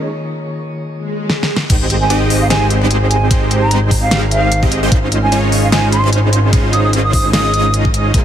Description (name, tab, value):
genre	future bass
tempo	149 BPM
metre	4/4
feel	swing 56% on 16ths, half-time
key	Ab major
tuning	A4 = 439 Hz
part	tine electric piano	accompaniment	0.0-1.5 s	Eb3 to Db5	-26 LUFS	left 2 dB	medium tremolo, sidechain pumping, tape echo
part	supersaw stab	riff	0.0-8.2 s	Ab3 to F5	-17 LUFS	right 1 dB	sidechain pumping, low-pass filter
part	swell and sub drop	sound effects	1.0-3.3 s	none	-25 LUFS	equal	none
part	pop drum kit	drums	1.3-8.2 s	crash cymbal, hi-hat, snare drum	-20 LUFS	equal	none
part	fat analog bass	bass	1.7-8.2 s	Ab1 to Bb1	-15 LUFS	equal	sidechain pumping
part	electronic kick drum	drums	1.7-8.2 s	none	-14 LUFS	equal	none
part	bright wooden flute	melody	2.0-7.7 s	F5 to Eb6	-19 LUFS	right 2 dB	sidechain pumping, digital delay
room	light reverb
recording	heavily compressed radio sound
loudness	-11 LUFS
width	side -10 dB against mid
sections	0.0-1.7 A section; 1.7-8.2 B section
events	swell 1.0-1.7; drum fill 1.3-1.7; drop 1.7-8.2; impact 1.7-3.3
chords	0.0 Eb7sus4; 1.7 Abmaj7; 4.9 Dbmaj9/Ab